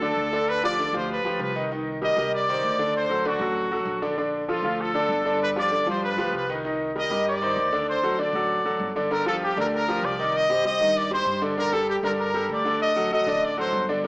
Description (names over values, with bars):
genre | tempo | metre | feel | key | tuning
latin, salsa | 195 BPM | 4/4 | straight | G minor | A4 = 442 Hz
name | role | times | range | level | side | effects
bright trumpet section | melody | 0.0-14.1 s | F4 to Eb5 | -24 LUFS | equal | none
bright concert grand piano | accompaniment | 0.0-14.1 s | D3 to Eb5 | -25 LUFS | equal | none
upright bass | bass | 0.0-14.1 s | G1 to G2 | -35 LUFS | equal | none
room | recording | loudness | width
wet large studio reverb, RT60 1.5 s | small speaker sound | -22 LUFS | side -26 dB against mid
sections
0.0-9.1 A section; 9.1-14.1 B section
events
none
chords
0.5 G7/D; 1.7 Cm7; 2.9 D7; 4.2 Bbmaj7; 5.4 G7; 6.6 Cm7; 7.9 D7; 9.1 Gm7; 10.3 Cm; 11.6 Gmadd9; 12.8 D7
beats
0.17 | 0.47 0.78 1.09 1.40 | 1.71 2.02 2.32 2.63 | 2.94 3.25 3.56 3.87 | 4.17 4.48 4.79 5.10 | 5.41 5.71 6.02 6.33 | 6.64 6.95 7.26 7.56 | 7.87 8.18 8.49 8.80 | 9.11 9.41 9.72 10.03 | 10.34 10.65 10.96 11.26 | 11.57 11.88 12.19 12.50 | 12.80 13.11 13.42 13.73 | 14.04